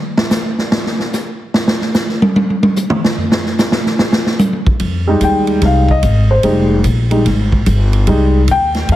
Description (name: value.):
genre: jazz, big band swing.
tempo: 147 BPM.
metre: 4/4.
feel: swing 65% on 8ths.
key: F minor.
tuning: A4 = 440 Hz.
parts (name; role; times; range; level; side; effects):
swinging big-band drum kit; drums; 0.2-9.0 s; hi-hat, kick drum, ride cymbal, snare drum, toms; -15 LUFS; right 1 dB; none.
upright bass; bass; 4.8-9.0 s; F1 to F2; -13 LUFS; equal; none.
warm concert grand piano; accompaniment; 5.1-9.0 s; G3 to G5; -14 LUFS; equal; none.
room: light reverb.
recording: heavily compressed radio sound, multiband compression.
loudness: -11 LUFS.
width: side -14 dB against mid.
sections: 0.0-4.8 A section; 4.8-9.0 A section.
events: drum solo 0.0-4.8; grand piano solo 4.8-9.0.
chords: 0.0 N.C.; 4.8 Fm9.